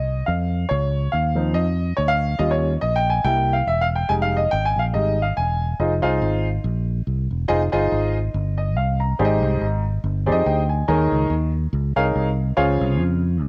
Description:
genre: uptempo gospel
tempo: 142 BPM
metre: 4/4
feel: swing 56% on 8ths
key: unclear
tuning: A4 = 440 Hz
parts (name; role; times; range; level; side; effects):
- warm baby grand piano; accompaniment; 0.0-13.2 s; Ab2 to Bb5; -24 LUFS; equal; cassette tape
- fingered electric bass; bass; 0.0-13.5 s; E1 to F2; -24 LUFS; equal; none
room: moderate spring reverb, RT60 1.6 s, small room ambience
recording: home recording on cassette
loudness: -21 LUFS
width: mono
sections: 0.0-5.8 A section; 5.8-9.2 B section; 9.2-13.5 C section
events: grand piano solo 0.0-5.8; grand piano fill 8.3-9.2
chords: 0.0 F7(no3); 0.7 Dbmaj7; 2.4 Eb7; 3.3 C7; 4.1 Fm7; 9.2 Abmaj7; 10.9 Eb7sus4; 12.6 Dbmaj7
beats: 0.28 | 0.71 1.13 1.56 1.98 | 2.40 2.83 3.25 3.67 | 4.10 4.52 4.95 5.37 | 5.79 6.22 6.64 7.07 | 7.49 7.91 8.34 8.76 | 9.18 9.61 10.03 10.45 | 10.88 11.30 11.72 12.15 | 12.57 12.99 13.42

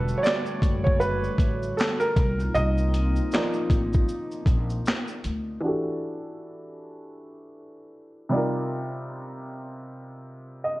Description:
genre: lo-fi hip hop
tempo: 78 BPM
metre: 4/4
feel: swing 59% on 16ths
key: unclear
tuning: A4 = 440 Hz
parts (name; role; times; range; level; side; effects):
- felt-muted upright piano; accompaniment; 0.0-10.8 s; C3 to Eb5; -28 LUFS; right 1 dB; low-pass filter
- dark analog pad; sustained chords; 0.0-5.6 s; D3 to F#4; -32 LUFS; left 1 dB; chorus, low-pass filter
- upright bass; bass; 0.0-5.6 s; E1 to D2; -27 LUFS; equal; none
- boom bap sampler-style drum kit; drums; 0.1-5.5 s; handclaps, hi-hat, kick drum, shaker, snare drum; -24 LUFS; equal; none
room: light reverb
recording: cassette tape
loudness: -23 LUFS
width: side -18 dB against mid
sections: 0.0-5.6 A section; 5.6-10.8 B section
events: felt piano solo 0.0-5.6; filter sweep on felt piano 5.6-10.8; felt piano fill 10.2-10.8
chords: 0.0 Em11 (rootless); 2.2 Cm11; 5.6 Em11; 8.3 Cm11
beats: 0.24 1.01 1.78 | 2.55 3.32 4.09 4.86 | 5.62 6.39 7.16 7.93 | 8.70 9.47 10.24

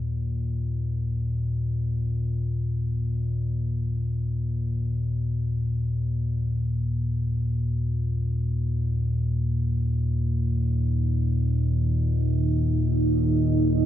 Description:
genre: dark ambient drone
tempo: free time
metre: none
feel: none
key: unclear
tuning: A4 = 440 Hz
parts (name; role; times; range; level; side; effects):
- deep rumbling drone; drone; 0.0-13.9 s; Eb2 to Bb2; -23 LUFS; left 1 dB; built-in reverb, wide subtle chorus
- deep dark ambient pad; sustained chords; 11.8-13.9 s; Eb3 to Eb5; -26 LUFS; right 3 dB; chorus, built-in reverb
room: wet cathedral reverb, RT60 5.4 s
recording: none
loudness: -23 LUFS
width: side -11 dB against mid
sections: 0.0-13.9 A section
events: none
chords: 0.0 Eb5; 10.5 Absus2/Eb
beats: free time

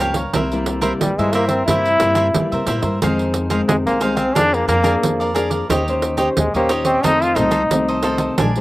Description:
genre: samba and choro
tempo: 90 BPM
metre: 4/4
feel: straight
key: F minor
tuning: A4 = 440 Hz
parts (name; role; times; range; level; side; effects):
- cavaquinho; accompaniment; 0.0-8.6 s; D4 to Ab5; -22 LUFS; right 2 dB; none
- nylon-string guitar; accompaniment; 0.0-8.6 s; F2 to C5; -22 LUFS; left 2 dB; none
- upright bass; bass; 0.0-8.6 s; Bb1 to E3; -24 LUFS; equal; none
- pandeiro; percussion; 0.1-8.6 s; none; -23 LUFS; right 4 dB; none
- brilliant trombone; melody; 1.0-8.0 s; G3 to F4; -18 LUFS; left 1 dB; none
room: little or no reverb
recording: recorded outdoors, with no room sound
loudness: -15 LUFS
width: side -17 dB against mid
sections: 0.0-8.6 A section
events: none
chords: 0.3 C7; 3.0 Fm7; 4.4 Bb7/F; 5.7 Eb6; 7.0 F7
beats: | 0.34 1.01 1.68 2.35 | 3.02 3.69 4.36 5.03 | 5.70 6.37 7.04 7.71 | 8.38

